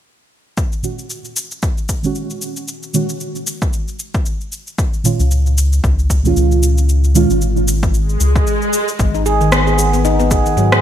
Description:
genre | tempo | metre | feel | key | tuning
organic downtempo | 114 BPM | 4/4 | swing 57% on 16ths | unclear | A4 = 440 Hz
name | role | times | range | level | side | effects
electronic kick drum | drums | 0.6-10.4 s | none | -18 LUFS | equal | overdrive, small room ambience
electronic shaker and rim click | drums | 0.6-10.8 s | none | -21 LUFS | left 1 dB | overdrive, small room ambience, gated reverb
deep mellow chord stab | accompaniment | 0.8-7.3 s | A#2 to F#4 | -19 LUFS | right 3 dB | chorus, phaser, sidechain pumping, digital delay
round analog bass | bass | 5.2-10.8 s | G#1 to G#2 | -14 LUFS | equal | sidechain pumping
swell | sound effects | 8.1-9.0 s | none | -21 LUFS | equal | none
handpan | arpeggios | 9.0-10.8 s | D#3 to G#4 | -14 LUFS | equal | digital delay
room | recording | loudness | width
light reverb | bright 1980s-style digital production | -14 LUFS | side -10 dB against mid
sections
0.6-9.0 A section; 9.0-10.8 B section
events
filter sweep on synth stab 0.6-9.0; swell 8.1-9.0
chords
0.6 G#5; 4.8 C#; 9.0 G#m

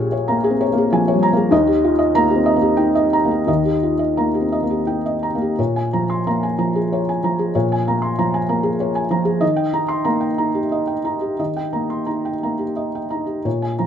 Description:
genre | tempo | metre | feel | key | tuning
neoclassical minimalist piano | 82-99 BPM | 3/4 | rubato | unclear | A4 = 440 Hz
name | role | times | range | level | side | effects
felt-muted upright piano | solo | 0.0-13.9 s | Bb1 to C6 | -16 LUFS | equal | none
room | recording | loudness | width
moderate studio reverb, RT60 0.6 s | faint mains hum | -16 LUFS | side -8 dB against mid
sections
0.0-5.6 A section; 5.6-13.9 A section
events
none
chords
0.0 Bbm7; 1.5 Eb; 5.6 Bbm7; 9.4 Eb

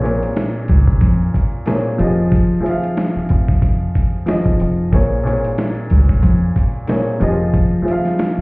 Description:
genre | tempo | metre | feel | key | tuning
hip hop, boom-bap hip-hop | 92 BPM | 4/4 | swing 57% on 16ths | Bb minor | A4 = 440 Hz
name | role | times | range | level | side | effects
dark upright piano | accompaniment | 0.0-8.4 s | Bb2 to F5 | -18 LUFS | equal | high-pass filter, low-pass filter
deep dub fingered electric bass | bass | 0.0-8.4 s | F1 to F2 | -17 LUFS | equal | none
dusty soul sampler-style drum kit | drums | 0.1-8.4 s | hi-hat, kick drum, snare drum | -17 LUFS | equal | none
room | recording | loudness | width
little or no reverb | heard muffled through a wall, stone room reverb, vinyl crackle, EQ, nothing above 7.7 kHz | -14 LUFS | side -27 dB against mid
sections
0.0-8.4 A section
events
none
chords
0.0 Bbm7; 2.0 Fm7; 4.9 Bbm7; 7.2 Fm7

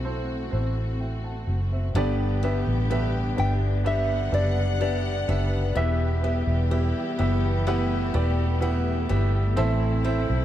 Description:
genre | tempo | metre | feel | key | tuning
pop ballad | 63 BPM | 4/4 | straight | unclear | A4 = 439 Hz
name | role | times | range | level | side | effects
warm baby grand piano | accompaniment | 0.0-10.4 s | G2 to A5 | -28 LUFS | right 1 dB | none
clear studio string section | sustained chords | 0.0-10.4 s | D3 to F#5 | -34 LUFS | left 1 dB | none
vintage muted fingered electric bass | bass | 0.0-10.4 s | E1 to B1 | -24 LUFS | equal | none
picked steel-string acoustic guitar | arpeggios | 2.0-10.4 s | E2 to G4 | -34 LUFS | left 7 dB | ping-pong delay
soft struck synth lead | melody | 3.4-8.6 s | D5 to G5 | -30 LUFS | left 1 dB | chorus
room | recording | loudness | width
light reverb, small room ambience | dark, warm production | -22 LUFS | side -12 dB against mid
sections
0.0-2.0 A section; 2.0-10.4 B section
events
none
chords
0.0 Am; 5.8 Em; 9.6 Am

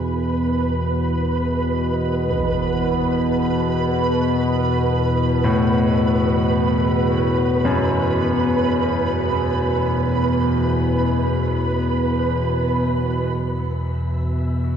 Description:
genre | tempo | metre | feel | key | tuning
dark ambient drone | free time | none | none | unclear | A4 = 441 Hz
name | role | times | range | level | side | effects
clear concert grand piano | arpeggios | 0.0-14.8 s | F#2 to F#4 | -26 LUFS | left 2 dB | diffuse ambient delay, shimmer reverb
analog drone | drone | 0.0-14.8 s | E2 to B2 | -19 LUFS | equal | chorus
flickering grainy texture | texture | 0.0-14.8 s | B4 to E5 | -24 LUFS | right 3 dB | built-in reverb, shimmer reverb
impact | percussion | 2.3-2.5 s | none | -33 LUFS | equal | low-pass filter on sfx
room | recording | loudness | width
wet cathedral reverb, RT60 5.3 s | none | -18 LUFS | side -8 dB against mid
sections
0.0-13.4 A section; 13.4-14.8 B section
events
fade-in on impacts and reversed cymbals 0.0-13.4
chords
0.0 Esus2

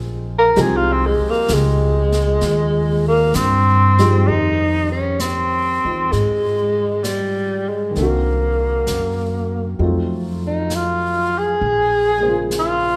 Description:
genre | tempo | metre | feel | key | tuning
jazz ballad | 66 BPM | 4/4 | swing 69% on 8ths | F minor | A4 = 440 Hz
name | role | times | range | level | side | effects
dark upright piano | accompaniment | 0.0-13.0 s | Db3 to C5 | -27 LUFS | equal | none
upright bass | bass | 0.0-13.0 s | Bb1 to Ab2 | -23 LUFS | equal | none
breathy tenor saxophone | melody | 0.4-13.0 s | G3 to Bb4 | -20 LUFS | equal | none
jazz brush drum kit | drums | 0.6-13.0 s | brushed snare drum, hi-hat, snare drum | -33 LUFS | equal | none
room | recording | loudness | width
moderate concert hall reverb, RT60 2.3 s | recorded in a church or concert hall | -18 LUFS | mono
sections
0.0-4.3 A section; 4.3-13.0 B section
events
tenor saxophone solo 0.0-4.3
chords
0.0 Fm7; 8.0 Cm7b5; 9.8 F7b9; 11.6 Bbm7

